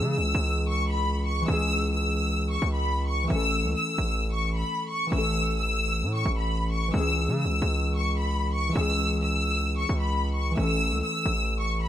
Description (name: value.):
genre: hip hop, trap.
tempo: 132 BPM.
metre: 4/4.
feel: half-time.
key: C# minor.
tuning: A4 = 441 Hz.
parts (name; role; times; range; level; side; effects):
rich studio violin section; melody; 0.0-11.9 s; B5 to E6; -28 LUFS; left 1 dB; none.
warbly lo-fi synth keys; accompaniment; 0.0-11.9 s; E3 to A4; -30 LUFS; left 1 dB; chorus.
distorted 808-style bass; bass; 0.0-11.9 s; A1 to C#3; -27 LUFS; equal; distortion.
room: small room ambience.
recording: none.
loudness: -24 LUFS.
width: side -11 dB against mid.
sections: 0.0-11.9 A section.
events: none.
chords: 0.0 C#m; 3.3 A; 6.9 C#m; 10.6 A.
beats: 0.12 0.57 1.03 | 1.48 1.94 2.39 2.85 | 3.30 3.76 4.21 4.67 | 5.12 5.57 6.03 6.48 | 6.94 7.39 7.85 8.30 | 8.76 9.21 9.66 10.12 | 10.57 11.03 11.48.